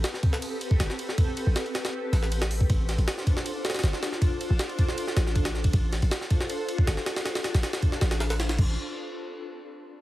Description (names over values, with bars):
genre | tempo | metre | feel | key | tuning
drum and bass, jungle | 158 BPM | 4/4 | straight | unclear | A4 = 439 Hz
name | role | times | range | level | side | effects
warm 808-style bass | bass | 0.0-8.8 s | G1 to A1 | -25 LUFS | equal | none
jungle sampler-style drum kit | drums | 0.0-8.7 s | crash cymbal, hi-hat, kick drum, ride cymbal, snare drum | -26 LUFS | equal | small room ambience
room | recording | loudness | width
light reverb | heavily compressed radio sound, multiband compression | -24 LUFS | side -16 dB against mid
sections
0.0-8.8 A section; 8.8-10.0 B section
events
drop 0.0-8.8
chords
none